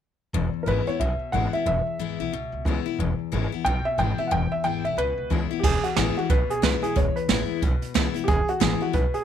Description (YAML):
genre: rockabilly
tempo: 181 BPM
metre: 4/4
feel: swing 61% on 8ths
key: E major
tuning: A4 = 440 Hz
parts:
  - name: picked steel-string acoustic guitar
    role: accompaniment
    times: 0.3-9.2 s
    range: E2 to E4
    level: -28 LUFS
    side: left 13 dB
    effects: none
  - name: upright bass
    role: bass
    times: 0.3-9.2 s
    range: E1 to C#2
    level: -27 LUFS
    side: right 1 dB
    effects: none
  - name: dark upright piano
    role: melody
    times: 0.6-9.2 s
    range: F#4 to G5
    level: -26 LUFS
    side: right 1 dB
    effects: none
  - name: jazz brush drum kit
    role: drums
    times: 5.6-9.2 s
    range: crash cymbal, hi-hat, kick drum, snare drum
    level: -24 LUFS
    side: right 4 dB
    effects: none
room: small room ambience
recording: 1960s-style stereo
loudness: -22 LUFS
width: side -9 dB against mid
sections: 0.3-5.6 A section; 5.6-9.2 B section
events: none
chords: 0.3 E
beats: | 0.34 0.67 1.00 1.33 | 1.66 1.99 2.32 2.66 | 2.99 3.32 3.65 3.98 | 4.31 4.64 4.97 5.31 | 5.64 5.97 6.30 6.63 | 6.96 7.29 7.62 7.95 | 8.28 8.61 8.94